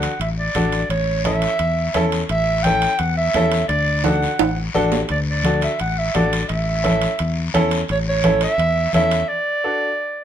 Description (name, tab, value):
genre	latin, cumbia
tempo	172 BPM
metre	4/4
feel	straight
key	D major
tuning	A4 = 440 Hz
part	breathy clarinet	melody	0.0-10.2 s	C#5 to G5	-20 LUFS	right 2 dB	none
part	bright upright piano	accompaniment	0.0-9.9 s	C#4 to A4	-22 LUFS	left 1 dB	none
part	fingered electric bass	bass	0.0-9.2 s	A1 to E2	-22 LUFS	left 1 dB	none
part	guiro	percussion	0.0-9.3 s	none	-30 LUFS	left 6 dB	none
part	timbales	percussion	0.0-9.3 s	none	-25 LUFS	right 8 dB	none
part	congas	percussion	0.2-9.1 s	none	-25 LUFS	right 1 dB	none
room	moderate studio reverb, RT60 0.7 s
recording	minimal, uncompressed stereo recording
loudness	-17 LUFS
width	side -9 dB against mid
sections	0.0-10.2 A section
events	drum fill 4.0-5.1; break 9.3-10.2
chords	0.0 D; 0.9 A; 3.7 D; 6.5 A; 9.3 D